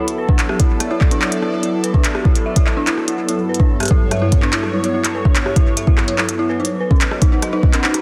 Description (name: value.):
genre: IDM.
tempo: 145 BPM.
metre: 4/4.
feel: straight.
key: E dorian.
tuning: A4 = 440 Hz.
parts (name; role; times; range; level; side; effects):
phased analog pad; sustained chords; 0.0-8.0 s; G2 to D5; -24 LUFS; equal; phaser, chorus.
dark detuned synth bell; arpeggios; 0.0-7.9 s; C#4 to E5; -24 LUFS; equal; chorus, dub echo.
glitchy drum kit; drums; 0.1-8.0 s; handclaps, hi-hat, rim click; -24 LUFS; equal; digital delay.
electronic kick drum; drums; 0.3-7.7 s; none; -16 LUFS; equal; none.
room: light reverb.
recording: dense, heavily limited modern master.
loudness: -16 LUFS.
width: mono.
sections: 0.0-8.0 A section.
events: none.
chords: 0.0 E7(no3); 3.3 Gadd9; 6.6 B.